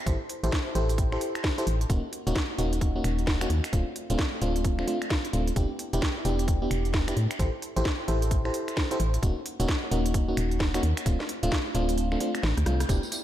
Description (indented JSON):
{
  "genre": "UK garage, two-step garage",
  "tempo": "131 BPM",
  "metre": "4/4",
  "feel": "swing 62% on 16ths",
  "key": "unclear",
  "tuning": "A4 = 440 Hz",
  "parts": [
    { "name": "FM electric piano", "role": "stabs", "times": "0.1-13.0 s", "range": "A3 to C5", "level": "-30 LUFS", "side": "equal", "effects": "chorus, cassette tape, analog delay" },
    { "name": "organ-like FM bass", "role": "bass", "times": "0.1-13.0 s", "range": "D1 to A2", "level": "-27 LUFS", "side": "equal", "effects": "tube saturation, sidechain pumping" },
    { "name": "electronic kick drum", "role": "drums", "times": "0.1-13.0 s", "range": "none", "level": "-28 LUFS", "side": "equal", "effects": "none" },
    { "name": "garage drum kit", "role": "drums", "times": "0.1-13.2 s", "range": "finger snaps, hi-hat, rim click, snare drum, tambourine", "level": "-33 LUFS", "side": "equal", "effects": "none" }
  ],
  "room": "light reverb",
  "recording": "none",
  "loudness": "-25 LUFS",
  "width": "side -12 dB against mid",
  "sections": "0.0-12.9 A section",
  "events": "kick drops out 12.0-12.9; drum fill 12.5-12.9; band accent 12.8",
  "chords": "0.0 Am7; 1.9 D#m7; 3.7 Dm7; 5.6 Em7; 7.2 Am7; 9.2 D#m7; 11.1 Dm7",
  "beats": "| 0.07 0.53 0.98 1.44 | 1.90 2.36 2.81 3.27 | 3.73 4.19 4.65 5.11 | 5.56 6.02 6.48 6.94 | 7.39 7.85 8.31 8.77 | 9.23 9.69 10.14 10.60 | 11.06 11.52 11.97 12.43 | 12.89"
}